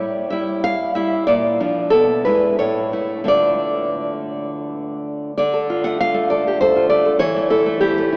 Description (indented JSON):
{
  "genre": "romantic piece for solo classical guitar",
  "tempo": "83-101 BPM",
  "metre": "3/4",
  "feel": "rubato",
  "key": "D minor",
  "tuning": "A4 = 438 Hz",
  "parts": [
    { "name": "nylon-string guitar", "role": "solo", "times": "0.0-8.2 s", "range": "A2 to F#5", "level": "-19 LUFS", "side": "equal", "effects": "none" }
  ],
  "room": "wet cathedral reverb, RT60 6.1 s",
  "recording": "in a vast, echoing space, AM radio sound",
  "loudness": "-19 LUFS",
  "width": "mono",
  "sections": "0.0-5.4 A section; 5.4-8.2 B section",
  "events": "none",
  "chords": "0.0 A7 (rootless); 1.3 Bb; 1.9 E/B; 2.6 A; 3.3 Dm; 7.2 A5/E",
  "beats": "0.01 0.65 | 1.27 1.90 2.57 | 3.27 3.98 4.68 | 5.36 6.00 6.62 | 7.22 7.82"
}